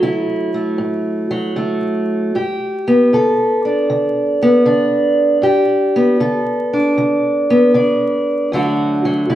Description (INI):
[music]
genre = blues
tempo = 78 BPM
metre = 4/4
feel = swing 68% on 8ths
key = unclear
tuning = A4 = 436 Hz
[part]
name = fingerpicked steel-string acoustic guitar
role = solo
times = 0.0-9.3 s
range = D2 to A4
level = -13 LUFS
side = equal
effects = none
[sound]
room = wet large studio reverb, RT60 1.2 s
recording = band playing live in one room, vinyl crackle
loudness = -13 LUFS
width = side -12 dB against mid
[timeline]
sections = 0.0-9.3 A section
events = none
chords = 0.0 D; 2.3 G; 8.5 D